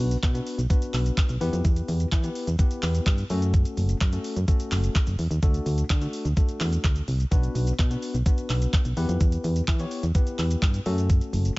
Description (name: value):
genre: dance-pop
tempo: 127 BPM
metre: 4/4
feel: straight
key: B minor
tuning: A4 = 440 Hz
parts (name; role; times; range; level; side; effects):
- tine electric piano; accompaniment; 0.0-11.5 s; A3 to C#5; -32 LUFS; left 2 dB; sidechain pumping
- solid FM bass; bass; 0.0-11.5 s; F#1 to E3; -25 LUFS; equal; sidechain pumping
- pop drum kit; drums; 0.1-11.6 s; handclaps, hi-hat, kick drum, shaker; -24 LUFS; equal; overdrive
room: little or no reverb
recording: nothing above 7.8 kHz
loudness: -22 LUFS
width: side -22 dB against mid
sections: 0.0-11.6 A section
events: none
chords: 0.0 Bm; 1.4 Em; 3.3 F#m; 5.4 D; 7.3 Bm; 9.0 Em; 10.9 F#m